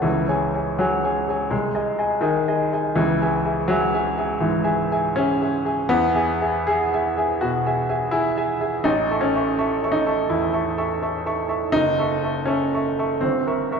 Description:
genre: classical, romantic character piece for solo piano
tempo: 82 BPM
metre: 4/4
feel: rubato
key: unclear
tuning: A4 = 440 Hz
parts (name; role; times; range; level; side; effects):
- clear grand piano; solo; 0.0-13.8 s; F#1 to C#6; -19 LUFS; equal; none
room: wet recital hall reverb, RT60 1.5 s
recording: heard from further back in the room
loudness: -19 LUFS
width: side -6 dB against mid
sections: 0.0-13.8 A section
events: none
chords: 0.0 C#m; 1.5 G#/B#; 3.0 C#m; 5.9 E; 8.9 A; 11.7 F#m7; 13.2 Gdim7

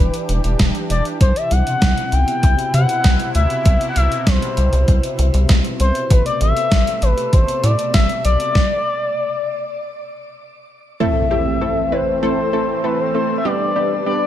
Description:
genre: synth-pop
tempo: 98 BPM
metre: 4/4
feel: straight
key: unclear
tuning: A4 = 443 Hz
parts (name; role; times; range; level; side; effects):
- expressive synth lead; melody; 0.0-14.3 s; B4 to G5; -20 LUFS; left 3 dB; chorus, tape echo, shimmer reverb
- sweeping resonant pad; sustained chords; 0.0-14.3 s; B2 to B4; -25 LUFS; right 2 dB; chorus, shimmer reverb
- rubbery square bass; bass; 0.0-8.4 s; E1 to C3; -16 LUFS; equal; none
- clean 12-bit digital drum machine; drums; 0.1-8.7 s; hi-hat, kick drum, snare drum; -17 LUFS; equal; gated reverb
- funky polysynth comp; accompaniment; 11.0-14.3 s; G3 to B4; -21 LUFS; right 2 dB; chorus, shimmer reverb
- impact; sound effects; 11.0-13.5 s; none; -24 LUFS; equal; none
room: light reverb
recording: none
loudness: -15 LUFS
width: side -12 dB against mid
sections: 0.0-11.0 A section; 11.0-14.3 B section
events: stop 8.6-11.0; impact 11.0-13.5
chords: 0.0 Em7; 1.2 Cmaj7; 6.1 Amadd9; 8.6 N.C.; 11.0 Am; 13.5 G

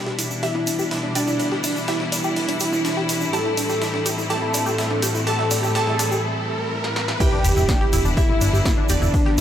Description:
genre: melodic techno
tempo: 124 BPM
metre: 4/4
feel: straight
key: E minor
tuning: A4 = 439 Hz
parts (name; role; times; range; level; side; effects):
- fat analog lead; melody; 0.0-9.4 s; D4 to A4; -25 LUFS; equal; lush chorus, sidechain pumping, tape echo
- glassy wavetable pluck; second line; 0.0-9.4 s; D5 to A5; -31 LUFS; right 2 dB; chorus, sidechain pumping, tape echo
- clear studio string section; sustained chords; 0.0-9.4 s; A2 to E4; -25 LUFS; left 1 dB; sidechain pumping
- tight sequenced synth; arpeggios; 0.0-9.4 s; D4 to G4; -29 LUFS; left 1 dB; chorus, sidechain pumping, tape echo
- riser and impact; sound effects; 0.0-9.1 s; none; -31 LUFS; right 1 dB; none
- breakbeat sampler-style drum kit; drums; 0.1-9.4 s; hi-hat, ride cymbal, snare drum; -34 LUFS; right 2 dB; high-pass filter on cymbals, high-pass filter on snare, high-pass filter on hats, high-pass filter on room
- punchy analog drum machine; drums; 0.2-9.4 s; crash cymbal, hi-hat, snare drum, toms; -29 LUFS; equal; sidechain pumping on toms, high-pass filter on toms, sidechain pumping on hats, high-pass filter on hats, high-pass filter on snare, sidechain pumping on cymbals, high-pass filter on cymbals, high-pass filter on room
- tube shaker; percussion; 0.2-9.4 s; none; -30 LUFS; right 2 dB; none
- electronic kick drum; drums; 7.2-9.2 s; none; -20 LUFS; equal; none
- fat analog bass; bass; 7.4-9.4 s; E1 to G1; -20 LUFS; equal; sidechain pumping
room: light reverb, digital ambience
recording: dry, gritty hardware recording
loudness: -18 LUFS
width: side -10 dB against mid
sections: 0.0-7.2 A section; 7.2-9.4 B section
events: build-up 0.0-7.2; drum fill 0.0-6.2, 6.8-7.2; riser 0.0-7.2; filter sweep on synth arpeggio sound 0.0-7.2; filter sweep on analog synth lead 0.0-7.2; break 6.2-7.2; drop 7.2-9.4; impact 7.2-9.1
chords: 0.0 Em7; 3.3 Am7; 7.2 Em7

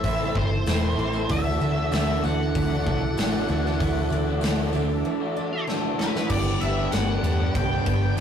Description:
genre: rock, shoegaze and dream pop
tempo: 96 BPM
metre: 4/4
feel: straight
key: G major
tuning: A4 = 440 Hz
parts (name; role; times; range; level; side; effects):
- octave-fuzz lead guitar; melody; 0.0-8.2 s; B4 to G5; -31 LUFS; left 1 dB; distortion
- ensemble organ-string; sustained chords; 0.0-8.2 s; F#4 to D6; -33 LUFS; right 1 dB; ensemble chorus
- picked twelve-string acoustic guitar; arpeggios; 0.0-8.2 s; E3 to D4; -31 LUFS; right 1 dB; none
- overdriven semi-hollow guitar; riff; 0.0-8.2 s; G2 to G4; -33 LUFS; right 3 dB; none
- raw garage guitar; riff; 0.0-8.2 s; G2 to G4; -31 LUFS; equal; overdrive
- vintage muted picked electric bass; bass; 0.0-8.2 s; E1 to E2; -26 LUFS; equal; none
- big rock drum kit; drums; 0.0-8.2 s; crash cymbal, hi-hat, kick drum, ride cymbal, snare drum; -28 LUFS; left 1 dB; none
- tambourine; percussion; 0.7-8.2 s; none; -48 LUFS; left 4 dB; none
room: moderate booth ambience, RT60 0.2 s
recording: rough rehearsal-room recording, warm saturation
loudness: -22 LUFS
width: side -8 dB against mid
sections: 0.0-6.3 A section; 6.3-8.2 B section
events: break 5.1-6.3; drum fill 5.7-6.3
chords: 0.0 Am; 1.3 Dadd9; 6.3 Gmaj7

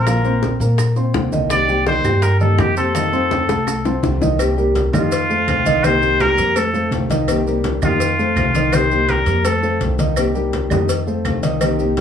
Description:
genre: latin, Cuban son and guajira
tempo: 166 BPM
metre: 4/4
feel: straight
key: unclear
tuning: A4 = 440 Hz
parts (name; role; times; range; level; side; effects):
- trumpet with straight mute; melody; 0.0-9.8 s; F4 to D5; -19 LUFS; equal; none
- nylon-string guitar; accompaniment; 0.0-12.0 s; C3 to G4; -23 LUFS; left 4 dB; none
- dark grand piano; arpeggios; 0.0-12.0 s; Eb3 to C6; -21 LUFS; right 1 dB; none
- upright bass; bass; 0.0-12.0 s; Bb1 to Bb2; -21 LUFS; equal; none
- bongos and cowbell; percussion; 0.1-12.0 s; none; -25 LUFS; left 6 dB; none
- claves; percussion; 0.1-11.8 s; none; -31 LUFS; right 9 dB; none
- congas; percussion; 0.1-12.0 s; none; -26 LUFS; equal; none
- maracas; percussion; 0.1-12.0 s; none; -34 LUFS; right 6 dB; none
room: light reverb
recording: small room ambience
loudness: -15 LUFS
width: side -8 dB against mid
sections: 0.0-4.4 A section; 4.4-12.0 B section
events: drum fill 3.3-4.4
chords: 0.1 Bbadd9; 1.5 Cm7; 3.0 F7; 4.4 Cm7; 5.1 F7; 5.8 Cm7; 6.6 F7; 7.3 Cm7; 8.0 F7; 8.7 Cm7; 9.4 F7; 10.2 Cm7; 10.9 F7

